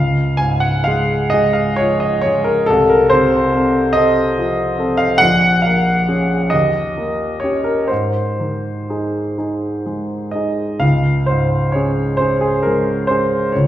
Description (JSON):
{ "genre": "classical, romantic nocturne for solo piano", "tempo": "40-49 BPM (dotted quarters)", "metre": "12/8", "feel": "rubato", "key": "Db major", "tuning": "A4 = 440 Hz", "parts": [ { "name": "warm grand piano", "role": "solo", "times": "0.0-13.7 s", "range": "Bb1 to Ab5", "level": "-14 LUFS", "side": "equal", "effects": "none" } ], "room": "wet recital hall reverb, RT60 1.6 s", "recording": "heard from further back in the room", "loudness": "-14 LUFS", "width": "side -12 dB against mid", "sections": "0.0-13.7 A section", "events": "none", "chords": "0.0 Db; 2.7 F7/C; 5.2 Bbm7; 6.5 Eb7; 7.9 Ab; 10.8 Db5" }